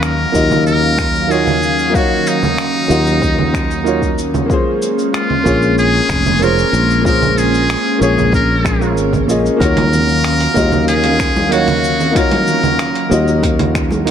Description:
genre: sunset chillout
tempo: 94 BPM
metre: 4/4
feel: straight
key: Eb minor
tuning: A4 = 440 Hz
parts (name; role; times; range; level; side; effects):
- trumpet with metal mute; melody; 0.0-13.4 s; Eb4 to Bb4; -18 LUFS; left 1 dB; digital delay
- clear concert grand piano; accompaniment; 0.0-14.1 s; Bb3 to F5; -18 LUFS; moving between left 3 dB and right 7 dB; auto-pan, vintage 12-bit sampler grit, digital delay
- airy breathy pad; sustained chords; 0.0-14.1 s; Eb3 to F5; -20 LUFS; equal; chorus
- sustaining fretless electric bass; bass; 0.0-14.1 s; F1 to Eb2; -17 LUFS; equal; none
- dusty soul sampler-style drum kit; drums; 0.0-14.1 s; cabasa, congas, finger snaps, hi-hat; -22 LUFS; right 3 dB; none
- electronic kick drum; drums; 0.3-13.9 s; none; -19 LUFS; equal; overdrive
- congas; percussion; 9.8-14.0 s; none; -23 LUFS; right 1 dB; none
room: light reverb, digital ambience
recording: none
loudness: -12 LUFS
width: side -8 dB against mid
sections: 0.0-14.1 A section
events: none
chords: 0.0 Ebm9; 4.5 Bbm9; 9.6 Ebm9

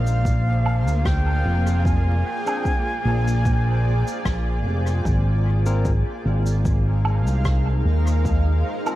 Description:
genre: ambient dub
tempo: 75 BPM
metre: 4/4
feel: swing 53% on 16ths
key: Bb mixolydian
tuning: A4 = 437 Hz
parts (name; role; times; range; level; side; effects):
- concert flute; melody; 0.0-4.7 s; F5 to Ab5; -31 LUFS; equal; dub echo
- granular cloud pad; sustained chords; 0.0-9.0 s; Ab3 to F5; -29 LUFS; equal; built-in reverb
- fingered electric bass; bass; 0.0-8.6 s; F1 to Eb2; -19 LUFS; equal; tube saturation
- cabasa, woodblock and rim click; drums; 0.1-9.0 s; none; -34 LUFS; right 2 dB; dub echo
- electronic kick drum; drums; 0.3-8.4 s; none; -24 LUFS; equal; overdrive
- barky tine electric piano; stabs; 2.5-9.0 s; C4 to Bb4; -35 LUFS; left 3 dB; dub echo
room: studio ambience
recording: echo-heavy mix, vinyl crackle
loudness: -18 LUFS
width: side -15 dB against mid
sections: 0.0-9.0 A section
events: none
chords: 0.0 Bb9; 5.1 Ab69

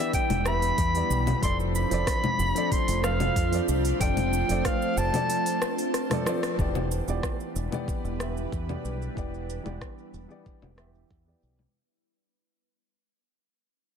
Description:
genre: sunset chillout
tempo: 93 BPM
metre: 4/4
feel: straight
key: E phrygian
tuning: A4 = 440 Hz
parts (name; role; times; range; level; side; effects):
- warm soprano saxophone; melody; 0.0-5.9 s; F5 to C6; -29 LUFS; equal; digital delay, shimmer reverb
- warm grand piano; accompaniment; 0.0-11.7 s; E3 to F5; -32 LUFS; moving between left 5 dB and right 6 dB; auto-pan, low-pass filter, tape echo, shimmer reverb
- ethereal airy pad; sustained chords; 0.0-11.7 s; G3 to C5; -32 LUFS; equal; ensemble chorus, built-in reverb, phaser, shimmer reverb
- deep house drum kit; drums; 0.1-11.7 s; congas, hi-hat, rim click, shaker; -31 LUFS; left 2 dB; low-pass filter on hats, low-pass filter on perc, soft clipping on snare, low-pass filter on snare, low-pass filter on room
- electronic kick drum; drums; 0.1-11.2 s; none; -30 LUFS; equal; none
- deep dub fingered electric bass; bass; 0.3-11.7 s; E1 to F2; -29 LUFS; equal; none
room: light reverb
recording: dense, heavily limited modern master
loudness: -24 LUFS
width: side -7 dB against mid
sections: 0.0-6.6 A section; 6.6-11.7 B section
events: kick drops out 5.3-6.6; drum fill 5.9-6.6; band accent 6.4-6.7; fade-out 6.6-11.7; filter sweep on drum 6.6-11.7; filter sweep on grand piano 6.6-11.7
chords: 0.0 Em7; 1.4 F6; 6.6 Em7

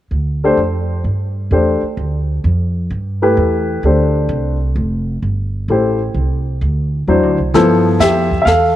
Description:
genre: jazz piano trio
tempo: 129 BPM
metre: 4/4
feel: swing 67% on 8ths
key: G mixolydian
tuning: A4 = 441 Hz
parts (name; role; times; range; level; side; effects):
- upright bass; bass; 0.1-8.8 s; F1 to G2; -17 LUFS; right 1 dB; none
- warm baby grand piano; melody; 0.4-8.8 s; F3 to F5; -14 LUFS; left 1 dB; none
- jazz brush drum kit; drums; 7.5-8.8 s; brushed snare drum, hi-hat, kick drum, snare drum; -24 LUFS; left 4 dB; none
room: moderate plate reverb, RT60 2.2 s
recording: 1960s-style stereo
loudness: -13 LUFS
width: side -13 dB against mid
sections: 0.1-7.5 A section; 7.5-8.8 B section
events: none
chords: 0.1 D7sus4; 5.7 Am7; 6.6 D9; 7.5 G13

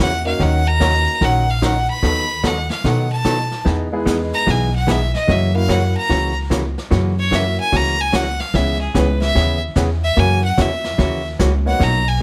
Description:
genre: country, western swing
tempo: 147 BPM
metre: 4/4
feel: swing 65% on 8ths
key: unclear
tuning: A4 = 440 Hz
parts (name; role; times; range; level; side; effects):
- bright fiddle; melody; 0.0-12.2 s; G#4 to B5; -23 LUFS; equal; none
- hollow-body jazz guitar; accompaniment; 0.0-12.0 s; B2 to A#4; -24 LUFS; equal; none
- upright bass; bass; 0.0-12.2 s; A#1 to B2; -21 LUFS; equal; none
- clear upright piano; accompaniment; 0.2-1.4, 3.9-11.8 s; G#3 to C#5; -28 LUFS; equal; none
- vintage brush drum kit; drums; 0.4-12.2 s; brushed snare drum, hi-hat, kick drum, snare drum; -28 LUFS; equal; none
room: moderate studio reverb, RT60 0.8 s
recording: none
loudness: -18 LUFS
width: mono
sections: 0.0-12.2 A section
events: fiddle solo 0.0-12.2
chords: 0.4 D#m7; 2.0 B7/D#; 3.7 Emaj7; 5.3 F#7; 8.5 C#m7; 10.2 F#7

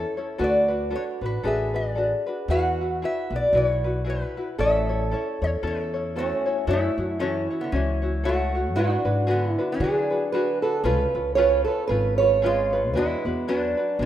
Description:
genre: Hawaiian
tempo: 115 BPM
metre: 4/4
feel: swing 58% on 8ths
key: A major, F# minor from 6.7 s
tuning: A4 = 438 Hz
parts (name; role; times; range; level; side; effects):
- lap resonator guitar; melody; 0.0-14.1 s; D3 to F#5; -27 LUFS; left 1 dB; none
- fingerpicked old ladder-braced acoustic guitar; second line; 0.0-14.1 s; C#4 to C#5; -26 LUFS; right 4 dB; none
- tenor ukulele; accompaniment; 0.0-14.1 s; C#4 to C#5; -29 LUFS; left 3 dB; none
- upright bass; bass; 0.0-14.1 s; G#1 to D3; -27 LUFS; equal; none
room: moderate lush hall reverb, RT60 2.3 s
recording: rough home demo mix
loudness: -21 LUFS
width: side -12 dB against mid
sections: 0.0-6.7 A section; 6.7-14.1 B section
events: none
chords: 0.4 D6; 2.5 Eadd9; 4.6 A; 6.7 F#m7; 8.8 G#m7b5; 10.9 C#7; 12.9 E9

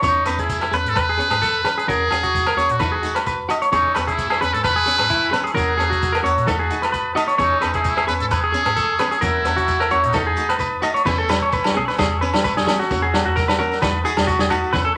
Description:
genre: highlife guitar band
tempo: 131 BPM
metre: 4/4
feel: straight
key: E major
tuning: A4 = 444 Hz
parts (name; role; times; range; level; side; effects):
- clean electric guitar; accompaniment; 0.0-14.9 s; E3 to G#4; -31 LUFS; equal; tremolo
- clean electric guitar; arpeggios; 0.0-15.0 s; E4 to D#5; -23 LUFS; equal; none
- vintage muted fingered electric bass; bass; 0.0-15.0 s; B1 to E3; -29 LUFS; equal; none
- vintage drum kit; drums; 0.0-14.8 s; crash cymbal, hi-hat, kick drum, rim click, snare drum; -29 LUFS; equal; none
- shekere; percussion; 0.0-14.9 s; none; -36 LUFS; equal; none
- trumpet with metal mute; melody; 0.1-10.8 s; D#4 to B4; -24 LUFS; equal; none
- agogo bells; percussion; 0.3-14.6 s; none; -29 LUFS; equal; none
- combo organ; sustained chords; 3.7-15.0 s; F#5 to E6; -31 LUFS; equal; none
room: wet club reverb, RT60 0.7 s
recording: none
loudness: -19 LUFS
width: mono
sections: 0.0-11.1 A section; 11.1-15.0 B section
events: none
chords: 0.0 E6; 1.9 F#7/E; 2.8 B7/E; 3.7 E6; 5.6 F#7/E; 6.5 B7/E; 7.4 E6; 9.2 F#7/E; 10.2 B7/E; 11.1 E6; 12.9 F#7/E; 13.8 B7/E

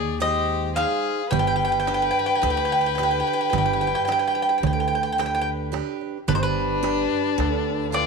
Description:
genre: greek folk, Greek bouzouki band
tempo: 109 BPM (eighths)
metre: 9/8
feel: straight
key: G phrygian dominant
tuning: A4 = 440 Hz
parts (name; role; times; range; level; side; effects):
- Greek bouzouki; melody; 0.0-8.1 s; B4 to G5; -23 LUFS; right 2 dB; none
- rich violin; second line; 0.0-8.1 s; D4 to B4; -27 LUFS; left 10 dB; none
- picked steel-string acoustic guitar; accompaniment; 0.0-8.1 s; D3 to G5; -30 LUFS; right 10 dB; none
- upright bass; bass; 0.0-8.1 s; G1 to Eb2; -29 LUFS; left 2 dB; none
- darbuka; percussion; 0.2-8.1 s; none; -29 LUFS; right 12 dB; none
room: light reverb, small room ambience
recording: 1960s-style stereo with parts hard left and right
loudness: -20 LUFS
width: side -4 dB against mid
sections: 0.0-6.3 A section; 6.3-8.1 B section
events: none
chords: 0.0 Ab; 1.3 G

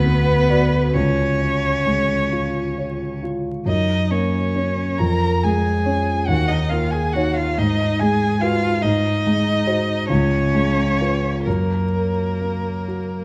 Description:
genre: classical, slow romantic movement for piano trio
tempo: 42-48 BPM (dotted quarters)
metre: 6/8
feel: rubato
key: unclear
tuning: A4 = 440 Hz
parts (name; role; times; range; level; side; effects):
- rich violin; melody; 0.0-13.2 s; A#4 to A#5; -26 LUFS; equal; none
- warm cello; second line; 0.0-13.2 s; A#3 to A#4; -29 LUFS; equal; none
- dark concert grand piano; accompaniment; 0.0-13.2 s; C#2 to D5; -22 LUFS; equal; none
room: moderate concert hall reverb, RT60 1.8 s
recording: close, detailed microphones, vinyl crackle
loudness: -20 LUFS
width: mono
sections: 0.0-13.2 A section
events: none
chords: 0.0 Bm/D; 0.9 C#; 3.7 F#; 5.0 C#/E#; 6.3 D#5; 7.6 G#m7; 8.8 G#7; 10.1 C#7; 11.5 F#

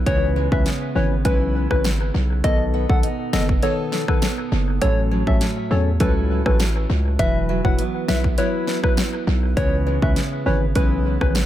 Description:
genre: dancehall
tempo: 101 BPM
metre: 4/4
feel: straight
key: unclear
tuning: A4 = 440 Hz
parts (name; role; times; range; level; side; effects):
- fingerpicked steel-string acoustic guitar; arpeggios; 0.0-11.5 s; A2 to A4; -27 LUFS; right 4 dB; tape echo
- hard-hitting 808-style bass; bass; 0.0-11.5 s; E1 to E2; -21 LUFS; equal; none
- soft struck synth lead; melody; 0.1-11.3 s; B4 to F#5; -27 LUFS; left 1 dB; chorus, tape echo
- percussive organ stab; accompaniment; 0.1-11.4 s; D#3 to B4; -25 LUFS; left 3 dB; chorus, tape echo
- pop drum kit; drums; 0.1-11.5 s; hi-hat, kick drum, rim click, snare drum; -22 LUFS; equal; tape echo
room: digital ambience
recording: echo-heavy mix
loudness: -18 LUFS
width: side -12 dB against mid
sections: 0.0-11.5 A section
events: none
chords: 0.1 C#m7; 2.4 B7; 4.8 A6; 7.2 Esus2; 9.6 C#m7

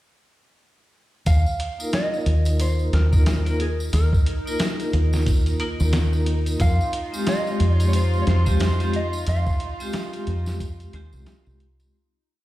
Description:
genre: trip hop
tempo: 90 BPM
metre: 4/4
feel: swing 60% on 16ths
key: F minor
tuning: A4 = 440 Hz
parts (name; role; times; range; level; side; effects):
- mellow electric guitar; melody; 1.3-10.6 s; Ab4 to F5; -31 LUFS; equal; tape echo
- deep dub fingered electric bass; bass; 1.3-11.9 s; C2 to F2; -20 LUFS; equal; none
- dusty soul sampler-style drum kit; drums; 1.3-11.9 s; hi-hat, kick drum, snare drum; -24 LUFS; equal; none
- tambourine; percussion; 1.3-11.9 s; none; -40 LUFS; equal; none
- bowed-like drone; texture; 2.8-11.9 s; Eb4; -37 LUFS; left 1 dB; built-in reverb
- vibraphone with hard mallets; accompaniment; 1.8-11.9 s; Ab3 to Bb4; -28 LUFS; equal; tremolo, low-pass filter, tape echo
- warm studio violin section; sustained chords; 6.6-11.9 s; F4; -33 LUFS; right 2 dB; none
room: little or no reverb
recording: played on a big sound system in a bare room, stone room reverb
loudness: -19 LUFS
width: side -16 dB against mid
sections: 1.3-11.9 groove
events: fade-out 8.4-11.9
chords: 1.3 Ebsus2; 6.6 Fmadd9

